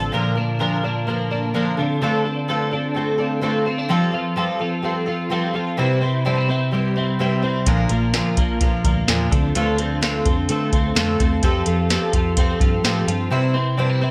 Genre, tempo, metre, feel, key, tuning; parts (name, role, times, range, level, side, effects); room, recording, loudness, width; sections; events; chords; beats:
jangly indie pop; 127 BPM; 4/4; straight; D minor; A4 = 436 Hz
fingerpicked twelve-string acoustic guitar; accompaniment; 0.0-14.1 s; Bb2 to C5; -25 LUFS; equal
twelve-string electric guitar; arpeggios; 0.0-14.1 s; Bb2 to Bb4; -24 LUFS; equal; ensemble chorus, slapback echo
vintage muted fingered electric bass; bass; 0.0-0.1, 7.7-13.3 s; Bb1 to D3; -27 LUFS; equal
soft vintage rhythm box; drums; 7.7-13.2 s; hi-hat, kick drum, snare drum; -22 LUFS; equal
moderate studio reverb, RT60 0.7 s; -20 LUFS; mono
0.1-14.1 A section
0.1 Bb; 1.8 Dm7; 3.9 Fadd9; 5.8 C; 7.7 Bb; 9.3 Dm7; 11.4 Fadd9; 13.3 C
| 0.13 0.60 1.07 1.54 | 2.02 2.49 2.96 3.43 | 3.90 4.37 4.84 5.31 | 5.79 6.26 6.73 7.20 | 7.67 8.14 8.61 9.08 | 9.55 10.02 10.49 10.96 | 11.43 11.90 12.37 12.84 | 13.31 13.78